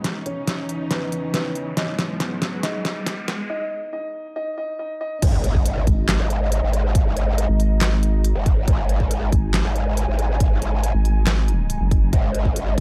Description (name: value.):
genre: heavy wobble dubstep.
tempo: 139 BPM.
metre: 4/4.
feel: half-time.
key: G# minor.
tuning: A4 = 442 Hz.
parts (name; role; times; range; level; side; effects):
dark concert grand piano; melody; 0.0-5.2 s; G#3 to D#5; -32 LUFS; equal; low-pass filter, dub echo.
rich studio string section; sustained chords; 0.0-12.8 s; G#2 to G#5; -33 LUFS; equal; sidechain pumping, low-pass filter.
dubstep drum kit; drums; 0.0-12.8 s; crash cymbal, handclaps, hi-hat, snare drum; -28 LUFS; equal; none.
riser and impact; sound effects; 1.1-7.0 s; none; -34 LUFS; equal; none.
deep dark ambient pad; texture; 0.0-3.5 s; E3 to F#5; -36 LUFS; equal; chorus, built-in reverb, sidechain pumping.
growl bass; bass; 5.2-12.8 s; F#1 to G#1; -24 LUFS; equal; chorus, overdrive.
electronic kick drum; drums; 5.2-12.8 s; none; -22 LUFS; equal; none.
vowel-sweep wobble bass; bass; 5.9-12.8 s; F#1 to G#1; -21 LUFS; equal; chorus, overdrive.
room: little or no reverb.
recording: dark, warm production, high-pass filter.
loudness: -21 LUFS.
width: mono.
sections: 0.0-5.2 A section; 5.2-12.8 B section.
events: build-up 0.0-5.2; drum fill 0.0-3.5; filter sweep on grand piano 0.0-5.2; filter sweep 0.0-5.2; riser 1.1-3.5; break 3.5-5.2; drop 5.2-12.8; impact 5.2-7.0.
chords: 0.0 C#madd9; 1.8 G#m7; 3.5 N.C.; 5.2 G#5.